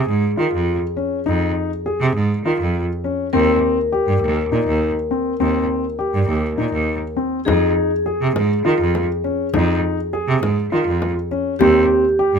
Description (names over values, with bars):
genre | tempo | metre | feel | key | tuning
contemporary instrumental, chamber music in an uneven meter | 203 BPM (eighths) | 7/8 | straight | unclear | A4 = 440 Hz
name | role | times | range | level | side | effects
vibraphone with medium mallets | second line | 0.0-12.4 s | G4 to Bb4 | -22 LUFS | left 1 dB | none
dark grand piano | arpeggios | 0.0-12.4 s | C4 to Ab4 | -21 LUFS | left 2 dB | none
bright cello | bass | 0.0-12.4 s | Eb2 to Eb3 | -20 LUFS | right 3 dB | none
frame drum | percussion | 7.5-12.3 s | none | -25 LUFS | left 4 dB | none
room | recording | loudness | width
little or no reverb | close, detailed microphones | -16 LUFS | side -6 dB against mid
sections
0.0-12.4 A section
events
none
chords
0.0 Fm7; 3.3 Cm7/Eb; 7.5 Fm7; 11.6 Cm/Eb